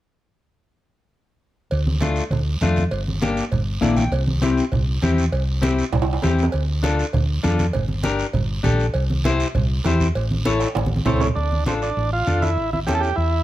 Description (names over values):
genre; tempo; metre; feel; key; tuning
latin, cumbia; 199 BPM; 4/4; straight; D minor; A4 = 440 Hz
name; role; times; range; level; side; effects
hollow-body short-scale fingered electric bass; bass; 1.7-13.4 s; G1 to F2; -22 LUFS; equal; none
congas; percussion; 1.7-13.3 s; none; -25 LUFS; right 2 dB; none
cowbell and timbales; percussion; 1.7-11.3 s; none; -30 LUFS; right 5 dB; none
guiro; percussion; 1.7-13.4 s; none; -35 LUFS; right 4 dB; none
clean electric guitar; accompaniment; 2.0-13.1 s; A3 to G5; -23 LUFS; left 4 dB; none
overdriven combo organ; melody; 11.1-13.4 s; C4 to A4; -23 LUFS; right 3 dB; none
room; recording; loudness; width
moderate studio reverb, RT60 0.8 s; none; -18 LUFS; side -14 dB against mid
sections
1.7-11.4 A section; 11.4-13.4 B section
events
clean electric guitar fill 3.7-4.1; drum fill 5.9-6.5, 10.6-11.4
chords
1.7 Dm; 2.9 Gm; 4.1 C; 6.5 Dm; 7.7 Gm; 8.9 C; 10.2 A; 11.4 Dm; 12.6 A7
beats
| 1.71 2.02 2.32 2.62 | 2.92 3.22 3.52 3.83 | 4.13 4.43 4.73 5.03 | 5.33 5.63 5.93 6.24 | 6.54 6.84 7.14 7.44 | 7.74 8.04 8.35 8.65 | 8.95 9.25 9.55 9.86 | 10.16 10.46 10.76 11.06 | 11.37 11.67 11.97 12.27 | 12.57 12.88 13.18